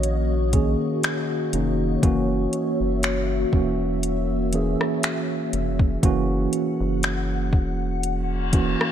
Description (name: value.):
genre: contemporary R&B.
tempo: 60 BPM.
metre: 4/4.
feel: swing 54% on 16ths.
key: unclear.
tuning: A4 = 440 Hz.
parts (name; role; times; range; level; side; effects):
mellow tine electric piano; accompaniment; 0.0-8.9 s; D#3 to G#4; -24 LUFS; right 3 dB; slow stereo tremolo.
glassy FM pad; sustained chords; 0.0-8.9 s; A#3 to F#5; -29 LUFS; left 5 dB; ensemble chorus, built-in reverb, phaser, sidechain pumping.
rubbery square bass; bass; 0.0-8.8 s; E1 to A#1; -26 LUFS; equal; none.
smooth R&B drum kit; drums; 0.0-8.9 s; finger snaps, hi-hat, kick drum, rim click; -23 LUFS; equal; none.
large celesta; texture; 3.0-6.0 s; C#5; -37 LUFS; left 7 dB; ping-pong delay.
reverse cymbal; sound effects; 8.3-8.9 s; none; -29 LUFS; left 4 dB; none.
room: light reverb, digital ambience.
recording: none.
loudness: -20 LUFS.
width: side -10 dB against mid.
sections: 0.0-8.9 A section.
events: reverse cymbal 8.3-8.9.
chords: 0.0 D#m7; 2.0 F#7.